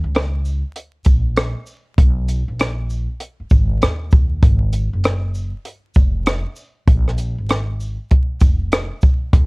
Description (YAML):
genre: hip hop, jazz-hop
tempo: 98 BPM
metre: 4/4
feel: swing 64% on 16ths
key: Bb minor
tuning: A4 = 440 Hz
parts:
  - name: upright bass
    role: bass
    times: 0.0-9.5 s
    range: F1 to Eb2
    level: -20 LUFS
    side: equal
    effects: none
  - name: compact cocktail drum kit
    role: drums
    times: 0.1-9.5 s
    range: hi-hat, kick drum, rim click, shaker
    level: -14 LUFS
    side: equal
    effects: none
room: little or no reverb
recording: worn, warbling old tape, cassette tape, vinyl crackle, warbly pitch drift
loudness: -15 LUFS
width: side -30 dB against mid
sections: 0.0-9.5 A section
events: none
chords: none